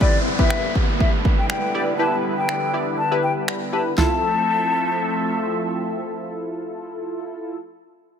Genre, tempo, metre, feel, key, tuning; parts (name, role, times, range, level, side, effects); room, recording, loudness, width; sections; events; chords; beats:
dance-pop; 121 BPM; 4/4; straight; F lydian; A4 = 440 Hz
hollow concert flute; melody; 0.0-5.4 s; D5 to A5; -24 LUFS; left 3 dB; ping-pong delay
funky polysynth comp; accompaniment; 0.0-7.6 s; E4 to D5; -26 LUFS; left 1 dB; chorus, sidechain pumping
filtered supersaw swell; sustained chords; 0.0-7.6 s; D3 to E5; -26 LUFS; equal; phaser, sidechain pumping
pop drum kit; drums; 0.0-4.1 s; finger snaps, kick drum, snare drum, toms; -21 LUFS; equal
downlifter; sound effects; 0.0-4.0 s; -27 LUFS; equal
light reverb, digital ambience; -19 LUFS; side -8 dB against mid
0.0-4.0 A section; 4.0-7.9 B section
0.0 G6; 4.0 Fmaj7
| 0.01 0.51 1.00 1.50 | 1.99 2.49 2.98 3.48 | 3.98 4.47 4.97 5.46 | 5.96 6.46 6.95 7.45